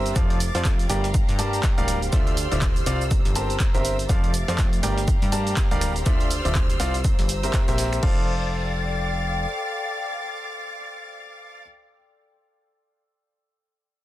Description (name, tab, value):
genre	piano house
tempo	122 BPM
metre	4/4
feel	swing 59% on 16ths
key	F major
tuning	A4 = 440 Hz
part	clear symphonic violin section	sustained chords	0.0-11.6 s	G4 to A6	-33 LUFS	equal	sidechain pumping
part	clear grand piano	riff	0.0-11.6 s	D3 to A5	-29 LUFS	equal	sidechain pumping, dub echo
part	plucky analog bass	bass	0.0-9.5 s	D1 to G2	-26 LUFS	equal	sidechain pumping
part	warbly tape-like pad	texture	0.0-11.8 s	A3 to G5	-34 LUFS	equal	chorus, built-in reverb, sidechain pumping
part	punchy analog drum machine	drums	0.1-8.1 s	crash cymbal, finger snaps, handclaps, hi-hat, shaker	-31 LUFS	right 2 dB	none
part	dusty soul sampler-style drum kit	drums	0.2-7.9 s	hi-hat, shaker, snare drum	-39 LUFS	right 1 dB	none
part	electronic kick drum	drums	0.2-8.1 s	none	-22 LUFS	equal	none
room	little or no reverb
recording	dense, heavily limited modern master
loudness	-20 LUFS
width	side -15 dB against mid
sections	0.0-8.0 A section; 8.0-12.0 B section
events	drop 0.0-8.0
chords	0.2 F6; 0.9 Gm7; 2.1 Dm9; 3.1 C7; 4.1 F6; 4.8 Gm7; 6.1 Dm9; 7.0 C7; 8.0 F6